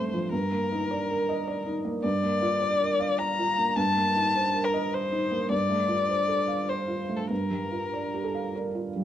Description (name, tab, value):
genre	neoclassical piano and strings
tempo	103 BPM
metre	3/4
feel	uneven beats, rubato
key	G minor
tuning	A4 = 441 Hz
part	muted violin	melody	0.0-8.5 s	A4 to Bb5	-27 LUFS	left 4 dB	none
part	felt-muted upright piano	accompaniment	0.0-9.0 s	G2 to F5	-28 LUFS	right 2 dB	none
room	light reverb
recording	dark, warm production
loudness	-24 LUFS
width	side -10 dB against mid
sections	0.0-9.0 A section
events	none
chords	0.3 Ebmaj7/G; 2.0 Gm7; 3.8 Cm7/G; 5.5 F/G; 7.3 Gm7